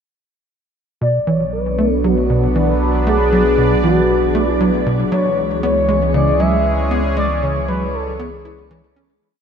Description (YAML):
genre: ambient, sequencer-driven space music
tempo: 117 BPM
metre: 4/4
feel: straight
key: B dorian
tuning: A4 = 441 Hz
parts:
  - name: expressive synth lead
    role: melody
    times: 1.0-9.0 s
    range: F#4 to E5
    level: -19 LUFS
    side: left 1 dB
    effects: chorus, shimmer reverb, ping-pong delay
  - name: sweeping resonant pad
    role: sustained chords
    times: 1.0-9.2 s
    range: E3 to D5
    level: -19 LUFS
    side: right 1 dB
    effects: chorus, shimmer reverb
  - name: tight sequencer bass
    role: riff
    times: 1.0-9.1 s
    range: B2 to E4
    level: -20 LUFS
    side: equal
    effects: lush chorus, shimmer reverb, ping-pong delay
  - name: warm sub bass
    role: bass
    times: 1.0-9.2 s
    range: B1 to C#2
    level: -22 LUFS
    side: equal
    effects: none
room: moderate huge ambient reverb, RT60 8.6 s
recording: in a vast, echoing space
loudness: -14 LUFS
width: side -7 dB against mid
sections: 1.0-9.2 A section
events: fade-out 6.5-9.2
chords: 1.0 Bm; 5.1 C#m